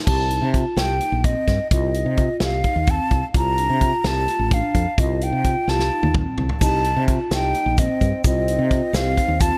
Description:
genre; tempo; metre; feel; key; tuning
progressive instrumental, band music in an uneven meter; 257 BPM (eighths); 7/8; straight; C dorian; A4 = 440 Hz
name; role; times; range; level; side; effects
breathy mellow silver concert flute; melody; 0.1-9.6 s; Eb5 to Bb5; -26 LUFS; equal; digital delay
vibraphone with soft mallets; arpeggios; 0.1-9.6 s; C4 to G4; -30 LUFS; equal; none
woody fretless electric bass; bass; 0.1-9.5 s; A1 to C3; -25 LUFS; equal; none
natural country drum kit; drums; 0.1-9.5 s; crash cymbal, hi-hat, kick drum, snare drum, toms; -24 LUFS; equal; none
breathy flugelhorn; second line; 5.7-9.6 s; C4 to F4; -31 LUFS; equal; none
egg shaker; percussion; 6.6-9.6 s; none; -38 LUFS; equal; none
room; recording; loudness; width
light reverb, studio ambience; none; -20 LUFS; mono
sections
0.1-9.6 A section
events
drum fill 5.7-6.6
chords
0.1 Cm7; 1.7 F5/C; 3.3 Bbmaj7/C; 5.0 F7/C; 6.6 Cm7; 8.2 F5/C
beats
| 0.07 0.30 0.54 0.77 1.00 1.24 1.47 | 1.71 1.94 2.17 2.41 2.64 2.88 3.11 | 3.34 3.58 3.81 4.04 4.28 4.51 4.74 | 4.98 5.21 5.44 5.68 5.91 6.14 6.38 | 6.61 6.84 7.07 7.31 7.54 7.77 8.01 | 8.24 8.47 8.70 8.94 9.17 9.40

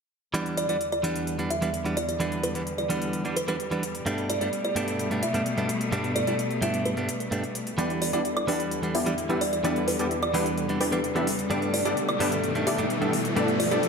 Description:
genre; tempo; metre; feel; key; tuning
EDM, festival progressive house; 129 BPM; 4/4; straight; unclear; A4 = 442 Hz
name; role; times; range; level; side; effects
direct-recorded clean electric guitar; accompaniment; 0.3-13.8 s; G2 to D4; -29 LUFS; right 2 dB; spring reverb, tape echo
clear studio string section; sustained chords; 0.3-13.9 s; E2 to A3; -32 LUFS; left 2 dB; low-pass filter
electronic hi-hat and woodblock; drums; 0.3-13.9 s; none; -35 LUFS; left 1 dB; none
kalimba; melody; 0.6-13.8 s; B4 to E5; -30 LUFS; right 2 dB; tape echo
supersaw stab; riff; 7.8-13.9 s; B3 to E5; -29 LUFS; left 1 dB; low-pass filter, tape echo
riser; sound effects; 9.6-13.9 s; none; -33 LUFS; left 2 dB; none
room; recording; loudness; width
moderate digital room reverb, RT60 1.1 s; none; -24 LUFS; side -5 dB against mid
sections
0.3-7.8 A section; 7.8-13.9 B section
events
filter sweep on string section 0.3-7.8; build-up 7.8-13.9; filter sweep on supersaw synth 7.8-13.9; riser 9.6-13.9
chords
0.3 Em7; 4.1 Gadd9; 7.8 Em7; 11.5 Gadd9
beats
| 0.34 0.81 1.27 1.74 | 2.20 2.67 3.13 3.60 | 4.06 4.53 4.99 5.46 | 5.92 6.39 6.85 7.32 | 7.79 8.25 8.71 9.18 | 9.64 10.11 10.57 11.04 | 11.51 11.97 12.44 12.90 | 13.37 13.83

